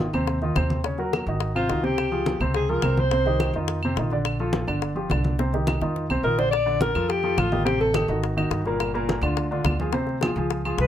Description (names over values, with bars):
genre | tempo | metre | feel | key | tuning
Afro-Cuban jazz | 211 BPM | 4/4 | straight | Bb major | A4 = 441 Hz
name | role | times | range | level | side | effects
warm baby grand piano | accompaniment | 0.0-10.9 s | Bb2 to D5 | -26 LUFS | equal | none
upright bass | bass | 0.0-10.9 s | G1 to F2 | -27 LUFS | right 1 dB | none
claves | percussion | 0.1-10.8 s | none | -34 LUFS | right 1 dB | none
congas | percussion | 0.1-10.9 s | none | -29 LUFS | equal | none
bongos | percussion | 0.3-10.9 s | none | -30 LUFS | left 11 dB | none
breathy alto saxophone | melody | 1.6-3.6, 6.2-8.2, 10.8-10.9 s | F4 to D5 | -24 LUFS | left 1 dB | none
room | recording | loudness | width
little or no reverb | close, detailed microphones | -21 LUFS | side -10 dB against mid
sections
0.0-6.5 A section; 6.5-10.9 B section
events
drum fill 5.4-6.5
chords
0.0 Ab6 (rootless); 0.8 Ebm7; 1.4 Ab7; 2.0 Dbmaj7; 3.1 Cm; 3.7 F5; 4.3 Bbmaj7; 4.8 G5; 5.4 Cm; 6.0 F5; 6.5 Bbmaj7; 7.7 Am7b5; 8.2 Ab5; 8.8 Gm7; 9.9 Dm7b5